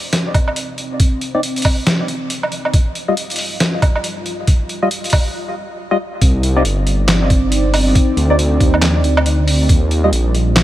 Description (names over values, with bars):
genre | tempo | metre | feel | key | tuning
deep dubstep | 138 BPM | 4/4 | swing 61% on 16ths, half-time | C minor | A4 = 440 Hz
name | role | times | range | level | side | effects
dark analog pad | sustained chords | 0.4-10.6 s | G3 to Eb5 | -22 LUFS | right 1 dB | chorus
trip hop sampler-style drum kit | drums | 0.1-10.6 s | handclaps, hi-hat, snare drum, woodblock | -19 LUFS | equal | none
electronic kick drum | drums | 0.3-9.8 s | none | -13 LUFS | equal | none
percussive organ stab | stabs | 1.3-10.1 s | G3 to Eb5 | -23 LUFS | left 1 dB | wide subtle chorus, vintage 12-bit sampler grit, dub echo
dark detuned saw bass | bass | 6.2-10.6 s | G1 to Eb2 | -15 LUFS | equal | none
room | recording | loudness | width
light reverb, digital ambience | faint mains hum | -13 LUFS | side -14 dB against mid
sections
0.0-6.2 A section; 6.2-10.6 B section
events
build-up 0.0-6.2; filter sweep on synth stab 0.0-6.2; filter sweep on analog synth pad 0.0-6.2; break 5.3-6.2; drop 6.2-10.6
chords
0.0 Cmadd9; 2.7 Ebadd9; 6.2 Cmadd9; 9.7 Ebadd9